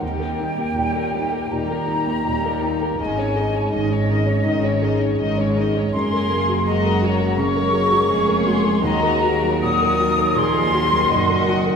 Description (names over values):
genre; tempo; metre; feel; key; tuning
cinematic, emotional film score for orchestra; 81 BPM; 4/4; rubato; unclear; A4 = 443 Hz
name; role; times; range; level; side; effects
warm studio violin section; melody; 0.0-11.8 s; G4 to Eb5; -29 LUFS; left 5 dB; none
dark studio violin section; second line; 0.0-11.8 s; Db4 to Bb4; -29 LUFS; equal; none
large flute ensemble; second line; 0.0-11.8 s; Eb5 to Eb6; -22 LUFS; left 1 dB; none
dark studio viola section; accompaniment; 0.0-11.8 s; Eb3 to Bb3; -29 LUFS; right 1 dB; none
felt-muted upright piano; accompaniment; 0.0-11.8 s; Eb2 to Db5; -24 LUFS; equal; none
dark French horn section; sustained chords; 0.0-11.7 s; Eb3 to Eb4; -28 LUFS; left 4 dB; none
warm studio cello section; bass; 0.0-11.8 s; Eb2 to Ab2; -26 LUFS; right 3 dB; none
warm studio double bass section; bass; 0.0-11.8 s; F1 to Eb2; -28 LUFS; right 2 dB; none
room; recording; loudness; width
wet scoring stage reverb, RT60 1.4 s; heard from further back in the room; -17 LUFS; side -6 dB against mid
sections
0.0-11.8 A section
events
none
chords
0.0 Eb; 3.0 Absus4; 5.9 Gbadd9; 8.8 Ebm